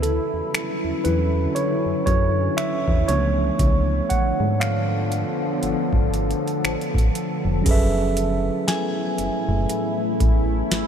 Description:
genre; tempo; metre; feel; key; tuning
contemporary R&B; 59 BPM; 4/4; swing 58% on 16ths; F# minor; A4 = 440 Hz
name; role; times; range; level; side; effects
mellow tine electric piano; accompaniment; 0.0-10.9 s; E#3 to F#5; -24 LUFS; right 2 dB; none
deep dark ambient pad; sustained chords; 0.0-10.9 s; A2 to A4; -25 LUFS; left 2 dB; chorus, built-in reverb
solid FM bass; bass; 0.0-10.8 s; E#1 to G#2; -24 LUFS; equal; none
booming analog drum machine; drums; 0.0-10.9 s; crash cymbal, finger snaps, hi-hat, kick drum, snare drum; -24 LUFS; equal; none
glassy synth bell; texture; 8.7-10.9 s; G#5; -31 LUFS; left 2 dB; chorus, tape echo
room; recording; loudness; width
moderate huge ambient reverb, RT60 8.4 s; dreamy mix soaked in reverb; -19 LUFS; side -8 dB against mid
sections
0.0-7.7 A section; 7.7-10.9 B section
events
tine electric piano solo 0.0-7.7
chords
0.0 Dmaj9; 3.1 C#7b9b13; 7.7 F#m11

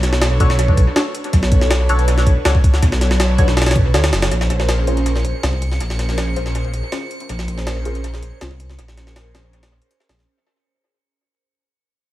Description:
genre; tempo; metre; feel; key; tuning
drum and bass, jungle; 161 BPM; 4/4; straight; unclear; A4 = 440 Hz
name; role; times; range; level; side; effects
dark detuned saw bass; bass; 0.0-10.3 s; F#1 to D2; -17 LUFS; equal; none
jungle sampler-style drum kit; drums; 0.0-10.3 s; hi-hat, kick drum, snare drum; -18 LUFS; equal; high-pass filter on hats, studio reverb, high-pass filter on snare, high-pass filter on kick, analog delay
filtered dub chord stab; stabs; 0.4-10.2 s; Db4 to C#5; -25 LUFS; left 2 dB; phaser, wide subtle chorus, cassette tape, dub echo
drifting glass-harmonics texture; texture; 4.8-10.3 s; Db7; -35 LUFS; right 4 dB; chorus, built-in reverb
room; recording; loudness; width
little or no reverb; echo-heavy mix, vinyl crackle; -14 LUFS; side -15 dB against mid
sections
0.0-4.3 A section; 4.3-10.3 B section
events
drop 0.0-4.3; fade-out 4.3-10.3; filter sweep on synth stab 4.3-10.3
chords
0.0 Bm9; 4.3 Bbm9

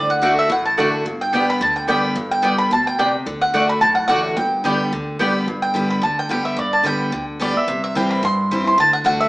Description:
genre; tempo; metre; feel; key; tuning
bluegrass; 218 BPM; 4/4; straight; G major; A4 = 442 Hz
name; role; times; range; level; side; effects
mandolin; melody; 0.0-9.3 s; D5 to C6; -18 LUFS; equal; none
picked steel-string acoustic guitar; accompaniment; 0.0-9.3 s; G2 to G4; -22 LUFS; equal; none
upright bass; bass; 0.0-9.3 s; G1 to G2; -32 LUFS; equal; none
mandolin; stabs; 0.2-5.3 s; A3 to G5; -21 LUFS; right 1 dB; none
room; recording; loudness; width
wet large studio reverb, RT60 0.9 s; band playing live in one room, small speaker sound; -16 LUFS; side -20 dB against mid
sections
0.0-5.5 A section; 5.5-9.3 A section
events
none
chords
0.0 D; 1.1 G; 3.3 D; 4.4 G; 7.7 C; 8.8 D

